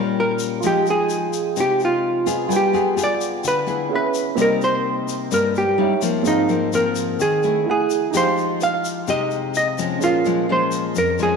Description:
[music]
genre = bossa nova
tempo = 128 BPM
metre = 4/4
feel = straight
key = F minor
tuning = A4 = 440 Hz
[part]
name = hollow-body jazz guitar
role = melody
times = 0.0-11.4 s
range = Eb4 to F5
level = -20 LUFS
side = right 2 dB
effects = slapback echo
[part]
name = nylon-string guitar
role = accompaniment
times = 0.0-11.4 s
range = F2 to Ab4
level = -23 LUFS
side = left 8 dB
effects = none
[part]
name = warm grand piano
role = accompaniment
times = 0.0-11.4 s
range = C4 to Ab5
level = -26 LUFS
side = right 11 dB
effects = none
[part]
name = tube shaker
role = percussion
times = 0.4-11.4 s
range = none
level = -33 LUFS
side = left 11 dB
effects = none
[sound]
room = wet echo chamber reverb, RT60 2.1 s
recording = 1960s-style stereo with parts hard left and right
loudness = -17 LUFS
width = side -5 dB against mid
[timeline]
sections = 0.0-11.4 A section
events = none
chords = 0.0 Eb9; 0.6 Fm9; 2.5 G7b9; 3.9 Dbm7; 4.4 Cm7; 5.8 Eb7b9; 6.3 Ab69; 7.7 Gbm9; 8.1 Fm9; 10.0 Bbm7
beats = 0.16 | 0.63 1.10 1.57 2.04 | 2.51 2.98 3.45 3.92 | 4.39 4.86 5.33 5.79 | 6.26 6.73 7.20 7.67 | 8.14 8.61 9.08 9.55 | 10.02 10.49 10.96

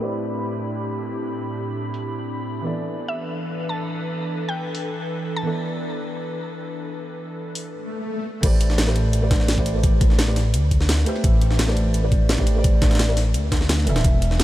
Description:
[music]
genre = liquid drum and bass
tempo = 171 BPM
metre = 4/4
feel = straight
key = A minor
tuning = A4 = 440 Hz
[part]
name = felt-muted upright piano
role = accompaniment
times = 0.0-14.4 s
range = E3 to E5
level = -29 LUFS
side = right 1 dB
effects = lush chorus, low-pass filter, tape echo
[part]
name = airy breathy pad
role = sustained chords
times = 0.0-7.7 s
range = A2 to B5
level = -28 LUFS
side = equal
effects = chorus, sidechain pumping
[part]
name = garage drum kit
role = drums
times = 1.9-2.0, 4.7-4.8, 7.6-14.4 s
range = crash cymbal, hi-hat, snare drum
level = -27 LUFS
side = equal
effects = none
[part]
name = mallet-like synth pluck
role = melody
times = 3.1-5.6 s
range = E5 to A5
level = -34 LUFS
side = equal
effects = chorus, diffuse ambient delay
[part]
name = swell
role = sound effects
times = 7.8-8.4 s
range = none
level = -34 LUFS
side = left 2 dB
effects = none
[part]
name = dark detuned saw bass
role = bass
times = 8.4-14.4 s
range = D1 to D2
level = -20 LUFS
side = equal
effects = none
[part]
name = electronic kick drum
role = drums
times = 8.4-14.1 s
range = none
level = -18 LUFS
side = equal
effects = overdrive
[part]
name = jungle sampler-style drum kit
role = drums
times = 8.4-14.4 s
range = hi-hat, snare drum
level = -29 LUFS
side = equal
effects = high-pass filter on hats, high-pass filter on snare, high-pass filter on room
[sound]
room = light reverb, digital ambience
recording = low-pass filter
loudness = -19 LUFS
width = side -15 dB against mid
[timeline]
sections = 0.0-8.4 A section; 8.4-14.4 B section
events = filter sweep on felt piano 0.0-8.4; filter sweep on analog synth pad 0.0-8.4; filter sweep 0.0-8.4; swell 7.8-8.4; drop 8.4-14.4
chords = 0.0 Am11; 2.6 E7sus4; 8.4 Am11; 13.9 E7sus4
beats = | 0.01 0.36 0.71 1.06 | 1.41 1.76 2.12 2.47 | 2.82 3.17 3.52 3.87 | 4.22 4.57 4.92 5.27 | 5.62 5.97 6.33 6.68 | 7.03 7.38 7.73 8.08 | 8.43 8.78 9.13 9.48 | 9.84 10.19 10.54 10.89 | 11.24 11.59 11.94 12.29 | 12.64 12.99 13.34 13.70 | 14.05 14.40

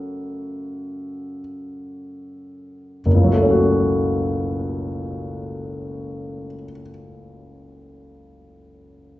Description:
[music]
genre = classical, romantic nocturne for solo piano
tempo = free time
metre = none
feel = none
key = F# minor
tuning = A4 = 441 Hz
[part]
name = warm baby grand piano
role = solo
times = 0.0-9.2 s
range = F#1 to F#5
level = -21 LUFS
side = equal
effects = none
[sound]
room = wet recital hall reverb, RT60 1.4 s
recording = heard from further back in the room, nothing above 7.9 kHz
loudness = -19 LUFS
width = side -16 dB against mid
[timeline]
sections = 0.0-3.0 A section; 3.0-9.2 B section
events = slowing down 0.0-3.0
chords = 0.0 F#m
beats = free time

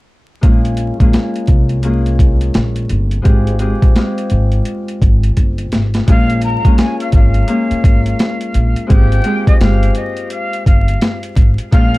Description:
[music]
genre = hip hop, boom-bap hip-hop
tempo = 85 BPM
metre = 4/4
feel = swing 62% on 16ths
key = unclear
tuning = A4 = 435 Hz
[part]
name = Celtic harp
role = accompaniment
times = 0.4-12.0 s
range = Ab3 to Ab4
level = -19 LUFS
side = left 1 dB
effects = cassette tape, high-pass filter, low-pass filter
[part]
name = upright bass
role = bass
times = 0.4-12.0 s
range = G1 to C2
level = -15 LUFS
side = equal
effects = none
[part]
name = boom bap sampler-style drum kit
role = drums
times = 0.4-12.0 s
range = hi-hat, kick drum, snare drum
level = -12 LUFS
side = equal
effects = overdrive
[part]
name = breathy jazz flute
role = melody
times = 6.1-12.0 s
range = Eb5 to Bb5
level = -22 LUFS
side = left 1 dB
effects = high-pass filter, low-pass filter, digital delay
[sound]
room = little or no reverb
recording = dark, warm production, vinyl crackle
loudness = -11 LUFS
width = side -20 dB against mid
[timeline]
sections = 0.4-6.1 A section; 6.1-12.0 B section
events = drum fill 5.4-6.1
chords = 0.4 Bbm7; 3.3 Fmadd9/Ab; 6.1 Bbm7; 8.9 Fmadd9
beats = | 0.43 1.14 1.84 2.55 | 3.25 3.96 4.66 5.37 | 6.08 6.78 7.49 8.19 | 8.90 9.61 10.31 11.02 | 11.72

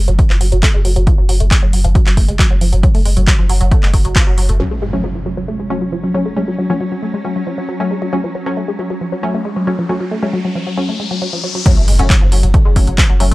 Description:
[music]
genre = driving peak-time techno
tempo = 136 BPM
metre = 4/4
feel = straight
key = F# minor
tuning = A4 = 440 Hz
[part]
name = saturated sub bass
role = bass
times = 0.0-4.6, 11.8-13.3 s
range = F#1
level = -14 LUFS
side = equal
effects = overdrive, sidechain pumping, low-pass filter
[part]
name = resonant blip pluck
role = riff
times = 0.1-13.3 s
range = E#3 to A3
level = -21 LUFS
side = equal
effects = phaser, sidechain pumping, analog delay
[part]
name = techno drum kit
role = drums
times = 0.1-4.7, 11.7-13.3 s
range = crash cymbal, handclaps, hi-hat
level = -20 LUFS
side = equal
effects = sidechain pumping on hats, low-pass filter on hats, low-pass filter on snare, sidechain pumping on cymbals, low-pass filter on cymbals
[part]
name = electronic kick drum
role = drums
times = 0.2-4.2, 11.7-13.1 s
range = none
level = -12 LUFS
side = equal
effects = none
[part]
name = filtered dub chord stab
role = stabs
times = 4.6-13.3 s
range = F#3 to C#4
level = -22 LUFS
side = left 2 dB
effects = wide subtle chorus, cassette tape, sidechain pumping, tape echo
[part]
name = swarming drone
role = drone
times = 5.2-13.3 s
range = F#3 to C#4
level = -26 LUFS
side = left 1 dB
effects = built-in reverb, sidechain pumping
[part]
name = impact and riser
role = sound effects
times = 4.6-13.3 s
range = none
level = -24 LUFS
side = equal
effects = none
[sound]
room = little or no reverb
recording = dry, gritty hardware recording, cassette tape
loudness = -12 LUFS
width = side -19 dB against mid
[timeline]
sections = 0.0-4.6 A section; 4.6-11.7 B section; 11.7-13.3 C section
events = filter sweep on synth arpeggio sound 0.0-4.6; band accent 4.2; impact 4.6-6.4, 11.7-13.3; riser 9.4-11.7; drop 11.7-13.3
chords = 0.0 N.C.; 4.6 F#m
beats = 0.19 0.63 | 1.07 1.51 1.95 2.39 | 2.83 3.27 3.72 4.16 | 4.60 5.04 5.48 5.92 | 6.36 6.80 7.25 7.69 | 8.13 8.57 9.01 9.45 | 9.89 10.33 10.78 11.22 | 11.66 12.10 12.54 12.98

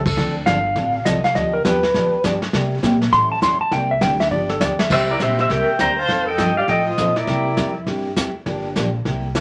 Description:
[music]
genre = country, western swing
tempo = 202 BPM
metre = 4/4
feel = swing 62% on 8ths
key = C mixolydian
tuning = A4 = 440 Hz
[part]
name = clean lap steel guitar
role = second line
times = 0.0-4.9 s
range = A4 to C6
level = -21 LUFS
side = equal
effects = none
[part]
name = upright bass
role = bass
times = 0.0-9.4 s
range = G1 to C3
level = -27 LUFS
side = equal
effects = none
[part]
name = vintage brush drum kit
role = drums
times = 0.1-9.4 s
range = brushed snare drum, crash cymbal, hi-hat, kick drum, snare drum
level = -26 LUFS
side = equal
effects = none
[part]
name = picked steel-string acoustic guitar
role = accompaniment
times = 0.2-9.4 s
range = C3 to A4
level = -27 LUFS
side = equal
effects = none
[part]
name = pedal steel guitar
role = melody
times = 4.9-7.7 s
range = Bb4 to Bb5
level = -22 LUFS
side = equal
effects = none
[part]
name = warm viola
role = second line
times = 4.9-7.7 s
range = E4 to C5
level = -27 LUFS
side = equal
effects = none
[sound]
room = wet club reverb, RT60 0.6 s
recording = none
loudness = -19 LUFS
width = mono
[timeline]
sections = 0.0-4.9 A section; 4.9-9.4 B section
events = electric slide guitar solo 0.0-4.9; drum fill 4.3-4.9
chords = 0.2 Dm7; 1.4 G7; 2.5 C7; 3.1 A7; 3.7 C9; 4.3 G7; 4.9 C9; 6.1 F9; 7.3 C9; 8.5 Gm7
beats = | 0.17 0.47 0.76 1.06 | 1.35 1.65 1.95 2.24 | 2.54 2.83 3.13 3.43 | 3.72 4.02 4.32 4.61 | 4.91 5.20 5.50 5.80 | 6.09 6.39 6.69 6.98 | 7.28 7.58 7.87 8.17 | 8.47 8.76 9.06 9.36

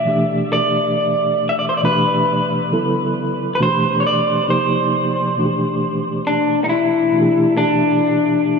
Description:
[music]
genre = R&B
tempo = 68 BPM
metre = 4/4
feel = swing 56% on 16ths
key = A dorian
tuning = A4 = 443 Hz
[part]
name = electric guitar through a small old amp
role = melody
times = 0.0-8.6 s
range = D4 to E5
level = -17 LUFS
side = left 1 dB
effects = spring reverb, diffuse ambient delay
[part]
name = mellow reed electric piano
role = accompaniment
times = 0.0-8.6 s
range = B2 to A4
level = -20 LUFS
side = right 1 dB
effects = fast tremolo
[sound]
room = wet huge ambient reverb, RT60 6.6 s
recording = dreamy mix soaked in reverb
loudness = -15 LUFS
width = side -5 dB against mid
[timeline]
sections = 0.0-7.1 A section; 7.1-8.6 A section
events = none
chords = 0.1 Em7; 2.7 Aadd9; 3.6 D7sus4; 4.5 Cm7; 5.4 Am11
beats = | 0.06 0.94 1.83 2.71 | 3.59 4.47 5.36 6.24 | 7.12 8.00

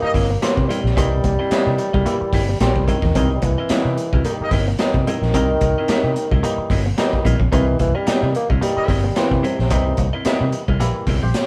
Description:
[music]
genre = funk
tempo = 110 BPM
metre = 4/4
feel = swing 56% on 16ths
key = C mixolydian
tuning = A4 = 442 Hz
[part]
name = dark bassoon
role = melody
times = 0.0-10.1 s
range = C3 to Bb3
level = -25 LUFS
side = equal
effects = none
[part]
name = dark horn section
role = second line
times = 0.0-0.1, 4.4-4.5, 8.8-8.9 s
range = Bb3 to D#5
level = -27 LUFS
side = equal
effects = none
[part]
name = electric guitar with an envelope filter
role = riff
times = 0.0-11.3 s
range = G3 to C4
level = -32 LUFS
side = equal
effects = none
[part]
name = clav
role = stabs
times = 0.0-11.5 s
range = D#3 to C5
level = -28 LUFS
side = equal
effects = none
[part]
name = vintage muted fingered electric bass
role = bass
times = 0.0-11.3 s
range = G1 to C3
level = -23 LUFS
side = equal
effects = none
[part]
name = clean electric guitar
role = accompaniment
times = 0.1-11.4 s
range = C4 to E5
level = -30 LUFS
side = equal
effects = none
[part]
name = crunchy breakbeat drum kit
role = drums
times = 0.1-11.5 s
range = hi-hat, kick drum, snare drum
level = -24 LUFS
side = equal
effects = none
[sound]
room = moderate stone room reverb, RT60 1.0 s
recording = band playing live in one room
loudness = -19 LUFS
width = mono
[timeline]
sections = 0.0-11.5 A section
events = none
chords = 0.0 C7#9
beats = 0.42 | 0.96 1.51 2.06 2.60 | 3.15 3.70 4.24 4.79 | 5.34 5.88 6.43 6.97 | 7.52 8.07 8.61 9.16 | 9.71 10.25 10.80 11.35

